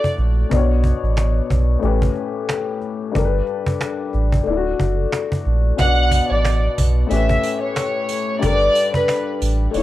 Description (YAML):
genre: hip hop, boom-bap hip-hop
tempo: 91 BPM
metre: 4/4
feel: swing 57% on 16ths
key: unclear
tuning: A4 = 438 Hz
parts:
  - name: dark upright piano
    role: accompaniment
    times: 0.0-9.8 s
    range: G2 to D5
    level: -22 LUFS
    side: left 7 dB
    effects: cassette tape, high-pass filter, low-pass filter
  - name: cajon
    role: drums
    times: 0.0-9.8 s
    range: none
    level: -23 LUFS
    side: right 1 dB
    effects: cassette tape
  - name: warm sub bass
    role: bass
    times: 0.2-9.8 s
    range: D1 to B1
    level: -18 LUFS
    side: right 1 dB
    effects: none
  - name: warm studio violin section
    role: melody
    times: 5.8-9.8 s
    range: B4 to F#5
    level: -20 LUFS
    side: equal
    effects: high-pass filter, low-pass filter, cassette tape, tape echo
  - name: sleigh bells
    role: percussion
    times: 5.8-9.8 s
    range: none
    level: -34 LUFS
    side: right 10 dB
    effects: none
room: studio ambience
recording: home recording on cassette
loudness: -16 LUFS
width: side -14 dB against mid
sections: 0.0-9.8 A section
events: none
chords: 0.0 D; 0.5 Bmadd9; 1.8 A7; 3.2 Gadd9; 4.5 D; 5.8 Bm; 7.1 A7; 8.4 Gadd9